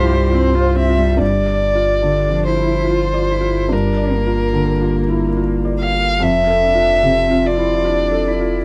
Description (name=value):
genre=neoclassical piano and strings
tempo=72 BPM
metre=3/4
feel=rubato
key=unclear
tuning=A4 = 443 Hz
part: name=muted violin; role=melody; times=0.0-8.6 s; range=Bb4 to F5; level=-20 LUFS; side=equal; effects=none
part: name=muted cello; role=second line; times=0.0-8.6 s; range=Bb3 to G4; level=-26 LUFS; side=equal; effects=none
part: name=felt-muted upright piano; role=accompaniment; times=0.0-8.6 s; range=C2 to D5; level=-21 LUFS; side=equal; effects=none
part: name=muted viola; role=accompaniment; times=0.0-1.2 s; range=F3 to F4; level=-24 LUFS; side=equal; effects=none
part: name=warm sub bass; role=bass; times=0.0-8.6 s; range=F1 to C2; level=-23 LUFS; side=equal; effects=none
room=light reverb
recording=none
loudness=-16 LUFS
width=mono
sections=0.0-1.2 A section; 1.2-8.6 B section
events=none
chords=0.0 Csus4; 1.2 Gm7; 6.2 Fmaj7